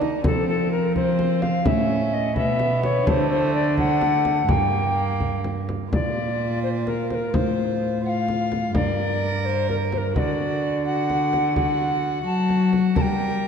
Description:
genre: classical, renaissance-style consort dance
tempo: 85 BPM (dotted quarters)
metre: 6/8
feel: straight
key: G minor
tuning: A4 = 441 Hz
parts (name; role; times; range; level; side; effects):
- rich violin; second line; 0.0-13.5 s; A3 to Bb4; -29 LUFS; right 4 dB; none
- warm cello; bass; 0.0-13.5 s; G2 to G3; -24 LUFS; equal; none
- frame drum; percussion; 0.0-13.2 s; none; -27 LUFS; equal; none
- alto recorder; melody; 0.3-13.5 s; A4 to A5; -24 LUFS; left 3 dB; none
room: wet concert hall reverb, RT60 2.1 s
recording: dark, warm production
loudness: -20 LUFS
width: side -6 dB against mid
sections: 0.0-5.9 A section; 5.9-13.5 B section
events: none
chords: 0.3 F5; 1.7 A; 3.1 D; 4.5 Gm; 5.9 Bb; 7.3 F/A; 8.8 Gm; 10.2 D; 13.0 Gm

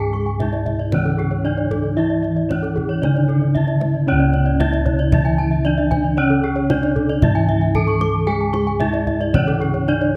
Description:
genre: Balinese gamelan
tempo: 114 BPM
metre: 4/4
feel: straight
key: C# pelog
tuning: A4 = 440 Hz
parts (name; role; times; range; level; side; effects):
- gamelan-type bronze metallophone; melody; 0.0-10.2 s; C#4 to A4-20c; -25 LUFS; equal; none
- gamelan-type bronze metallophone; accompaniment; 0.0-10.2 s; C#3 to G#3-30c; -27 LUFS; equal; none
- gamelan-type bronze metallophone; arpeggios; 0.0-10.2 s; G#4-30c to D6+20c; -30 LUFS; equal; none
- gamelan-type bossed gongs; bass; 0.0-10.2 s; C#2 to G#4-30c; -22 LUFS; equal; none
- gamelan-type bronze metallophone; arpeggios; 0.1-10.0 s; G#4-30c to C#6; -30 LUFS; equal; none
- kendang; percussion; 0.1-10.0 s; none; -26 LUFS; equal; none
room: moderate recital hall reverb, RT60 1.4 s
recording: none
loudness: -18 LUFS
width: mono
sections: 0.0-10.2 A section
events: none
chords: none

